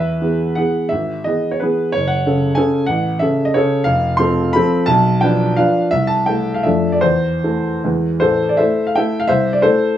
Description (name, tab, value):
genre	classical, romantic triple-time dance for piano with dotted rhythms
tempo	143-198 BPM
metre	3/4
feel	rubato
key	A minor from 3.9 s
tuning	A4 = 440 Hz
part	warm grand piano	solo	0.0-10.0 s	F1 to C6	-14 LUFS	equal	none
room	light reverb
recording	small room ambience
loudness	-14 LUFS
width	side -11 dB against mid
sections	0.0-8.2 A section; 8.2-10.0 B section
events	none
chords	0.0 E; 0.9 E/G#; 1.9 F#m; 2.9 F#m/A; 3.9 F; 4.9 Bm7b5; 5.9 Am/C; 6.7 Dm/F; 7.0 Am/E; 7.8 E; 8.2 Am; 9.3 Am/C